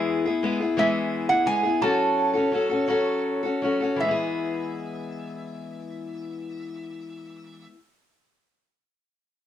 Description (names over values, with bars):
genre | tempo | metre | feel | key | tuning
folk | 52-60 BPM (dotted quarters) | 6/8 | straight | E major | A4 = 440 Hz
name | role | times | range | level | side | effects
picked steel-string acoustic guitar | accompaniment | 0.0-7.8 s | E3 to A4 | -25 LUFS | left 2 dB | none
metal-body resonator slide guitar | melody | 0.8-7.7 s | E5 to A5 | -24 LUFS | right 3 dB | none
room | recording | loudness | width
moderate studio reverb, RT60 0.6 s | none | -22 LUFS | side -10 dB against mid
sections
0.0-4.0 A section; 4.0-8.6 B section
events
slowing down 0.0-4.0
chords
0.0 E; 1.8 F#m; 4.0 E